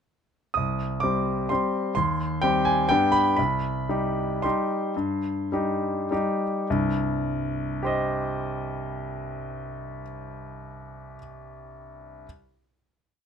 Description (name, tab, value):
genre	classical, piano waltz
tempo	98-132 BPM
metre	3/4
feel	rubato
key	C minor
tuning	A4 = 440 Hz
part	clear grand piano	solo	0.5-12.3 s	C2 to Eb6	-24 LUFS	equal	none
room	light reverb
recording	close, detailed microphones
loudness	-23 LUFS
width	side -7 dB against mid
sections	0.6-6.7 A section; 6.7-10.1 final chord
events	slowing down 2.7-6.7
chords	0.6 Cm; 2.0 Cm/Eb; 2.9 G; 3.4 Cm